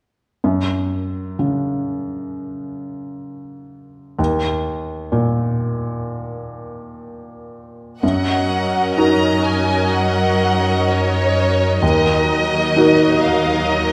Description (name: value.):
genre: cinematic, emotional film score for orchestra.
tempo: 63 BPM.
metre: 4/4.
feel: rubato.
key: F# major.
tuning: A4 = 445 Hz.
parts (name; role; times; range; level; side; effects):
felt-muted upright piano; accompaniment; 0.4-13.9 s; D#2 to A#4; -22 LUFS; equal; none.
warm symphonic violin section; melody; 8.0-13.9 s; C#5 to A#5; -23 LUFS; equal; none.
rich symphonic violin section; second line; 8.0-13.9 s; A#4 to D#5; -24 LUFS; equal; none.
rich symphonic viola section; accompaniment; 8.0-13.9 s; F#3 to D#4; -25 LUFS; equal; none.
warm studio cello section; bass; 8.0-13.9 s; D#2 to F#2; -25 LUFS; equal; none.
room: wet scoring stage reverb, RT60 1.6 s.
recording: none.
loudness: -18 LUFS.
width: mono.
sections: 0.4-8.0 A section; 8.0-13.9 B section.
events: none.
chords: 0.4 F#5; 4.2 D#5; 8.0 F#6; 11.8 D#m.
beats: | 0.43 1.38 2.32 3.25 | 4.18 5.12 6.07 7.04 | 8.02 8.97 9.92 10.87 | 11.82 12.76 13.70.